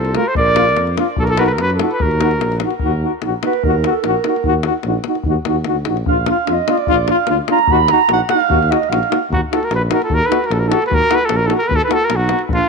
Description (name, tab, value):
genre	balkan folk, Balkan brass band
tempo	148 BPM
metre	2/4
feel	swing 53% on 16ths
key	Eb hungarian minor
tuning	A4 = 439 Hz
part	mellow trumpet	melody	0.0-2.6, 9.3-12.7 s	F4 to D5	-17 LUFS	equal	tape echo
part	dark clarinet	second line	0.0-12.7 s	D4 to Cb6	-19 LUFS	right 10 dB	none
part	mellow tuba	bass	0.0-12.6 s	Bb1 to F#2	-20 LUFS	equal	none
part	davul	percussion	0.0-12.6 s	none	-22 LUFS	left 5 dB	none
part	mellow euphonium	accompaniment	0.1-12.4 s	A3 to D#4	-24 LUFS	right 17 dB	none
part	bright trombone	accompaniment	0.2-12.4 s	F4 to Gb4	-20 LUFS	left 13 dB	none
room	moderate plate reverb, RT60 2.3 s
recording	1960s-style stereo with parts hard left and right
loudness	-13 LUFS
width	side -4 dB against mid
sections	0.0-2.8 A section; 2.8-9.3 B section; 9.3-12.7 C section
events	speeding up 0.0-12.7; clarinet solo 2.8-9.3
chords	0.4 Bb; 1.2 B; 2.0 Ebm; 6.1 Bb; 7.7 Ebm